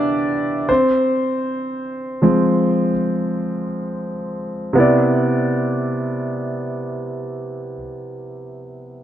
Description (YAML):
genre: R&B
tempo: 59 BPM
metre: 4/4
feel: swing 54% on 16ths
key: C major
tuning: A4 = 438 Hz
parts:
  - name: warm grand piano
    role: accompaniment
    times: 0.0-9.0 s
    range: C3 to E5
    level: -18 LUFS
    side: equal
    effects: low-pass filter
room: moderate spring reverb, RT60 2.3 s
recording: none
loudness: -17 LUFS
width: side -11 dB against mid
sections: 0.0-4.8 A section; 4.8-8.8 B section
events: grand piano solo 0.0-4.8; filter sweep on grand piano 0.0-4.8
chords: 0.0 Cmaj9; 0.7 Fm; 4.8 Cmaj9